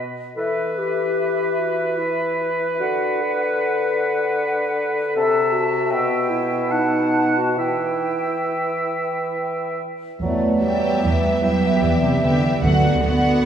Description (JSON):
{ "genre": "classical, slow romantic movement for symphony orchestra", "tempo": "67-80 BPM", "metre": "3/4", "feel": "rubato", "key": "E minor", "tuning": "A4 = 442 Hz", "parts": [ { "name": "mellow bassoon", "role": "accompaniment", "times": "0.0-13.5 s", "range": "B2 to G3", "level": "-24 LUFS", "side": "right 1 dB", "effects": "none" }, { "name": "clear oboe", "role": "second line", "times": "0.4-9.8 s", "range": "B4 to F#5", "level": "-25 LUFS", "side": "right 1 dB", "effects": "none" }, { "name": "dark clarinet", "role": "second line", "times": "0.4-13.5 s", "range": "D#4 to D5", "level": "-25 LUFS", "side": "left 3 dB", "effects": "none" }, { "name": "small flute group", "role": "second line", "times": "0.4-13.4 s", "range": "D5 to A5", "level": "-27 LUFS", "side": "right 1 dB", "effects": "none" }, { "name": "mellow French horn section", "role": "sustained chords", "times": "10.2-12.9 s", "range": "B3 to F#4", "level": "-30 LUFS", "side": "left 2 dB", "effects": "none" }, { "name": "dark symphonic double bass section", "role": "bass", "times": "10.2-13.3 s", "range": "D2 to E2", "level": "-23 LUFS", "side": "right 2 dB", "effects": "none" }, { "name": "warm studio cello section", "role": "bass", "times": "10.2-13.5 s", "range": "C3 to B3", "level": "-21 LUFS", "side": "right 3 dB", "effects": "none" }, { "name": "warm studio violin section", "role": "melody", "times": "10.6-13.5 s", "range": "E5 to F#5", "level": "-28 LUFS", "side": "left 2 dB", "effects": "none" }, { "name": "warm studio violin section", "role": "second line", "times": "10.6-13.5 s", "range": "F#4 to G4", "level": "-28 LUFS", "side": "left 2 dB", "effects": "none" }, { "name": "warm chamber viola section", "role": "accompaniment", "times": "10.6-13.5 s", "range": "B3", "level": "-24 LUFS", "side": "equal", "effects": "none" } ], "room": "wet concert hall reverb, RT60 2.3 s", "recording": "recorded in a church or concert hall", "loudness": "-18 LUFS", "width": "side -8 dB against mid", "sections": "0.0-10.2 A section; 10.2-13.5 A section", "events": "none", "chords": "0.4 Em; 2.8 Bm/D; 5.2 Am/C; 5.9 Em/B; 7.6 Em; 12.6 Bm/D" }